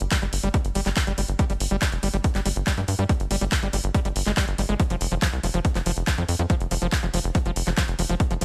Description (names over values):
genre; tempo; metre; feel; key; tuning
psychedelic trance; 141 BPM; 4/4; straight; unclear; A4 = 440 Hz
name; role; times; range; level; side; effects
tight sequencer bass; bass; 0.0-8.4 s; F1 to G2; -28 LUFS; equal; none
techno drum kit; drums; 0.0-8.4 s; handclaps, hi-hat; -31 LUFS; equal; studio reverb
overdriven acid bass; riff; 0.1-8.4 s; F3 to Ab3; -32 LUFS; equal; distortion, sidechain pumping, tape echo
electronic kick drum; drums; 0.1-8.3 s; none; -26 LUFS; equal; studio reverb
room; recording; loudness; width
little or no reverb; lossy compression artefacts; -24 LUFS; mono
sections
0.0-8.4 A section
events
none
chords
0.0 N.C.; 4.8 F5